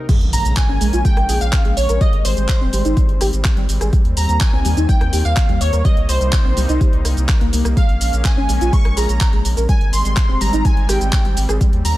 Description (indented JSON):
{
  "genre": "progressive house",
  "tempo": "125 BPM",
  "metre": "4/4",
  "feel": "straight",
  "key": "Bb dorian",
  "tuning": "A4 = 440 Hz",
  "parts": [
    { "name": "warm analog pad", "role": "sustained chords", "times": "0.0-12.0 s", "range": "C3 to Eb4", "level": "-28 LUFS", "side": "left 1 dB", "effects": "chorus, sidechain pumping" },
    { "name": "soft round pluck", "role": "arpeggios", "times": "0.1-11.7 s", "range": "G3 to Bb4", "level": "-24 LUFS", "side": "equal", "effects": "ensemble chorus, cassette tape, sidechain pumping, digital delay" },
    { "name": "deep house drum kit", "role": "drums", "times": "0.1-11.9 s", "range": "crash cymbal, handclaps, hi-hat, rim click, shaker", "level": "-25 LUFS", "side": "equal", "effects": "overdrive" },
    { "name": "electronic kick drum", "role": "drums", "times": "0.1-11.7 s", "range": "none", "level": "-16 LUFS", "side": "equal", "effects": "overdrive" },
    { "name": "impact", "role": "sound effects", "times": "0.1-2.0 s", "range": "none", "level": "-26 LUFS", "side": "equal", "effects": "none" },
    { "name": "round analog bass", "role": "bass", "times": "0.2-11.9 s", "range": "Eb1 to Eb2", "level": "-18 LUFS", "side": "equal", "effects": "sidechain pumping" },
    { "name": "wide unison lead", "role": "melody", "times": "0.3-12.0 s", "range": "C5 to Db6", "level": "-24 LUFS", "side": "right 1 dB", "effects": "lush chorus, digital delay" },
    { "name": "glassy wavetable pluck", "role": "second line", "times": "0.3-12.0 s", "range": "C5 to Db6", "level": "-29 LUFS", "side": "equal", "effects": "chorus, vintage 12-bit sampler grit, sidechain pumping" }
  ],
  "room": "little or no reverb",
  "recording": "none",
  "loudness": "-14 LUFS",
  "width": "side -16 dB against mid",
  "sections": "0.1-12.0 A section",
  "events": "drop 0.1-12.0; impact 0.1-2.0",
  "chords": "0.1 Bbm7; 2.0 Abmaj7; 3.9 Eb6; 5.8 Cm7; 7.8 Bbm7; 9.7 Abmaj7",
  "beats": "| 0.09 0.57 1.05 1.53 | 2.01 2.49 2.97 3.45 | 3.93 4.41 4.89 5.37 | 5.85 6.33 6.81 7.29 | 7.77 8.25 8.73 9.21 | 9.69 10.17 10.65 11.13 | 11.61"
}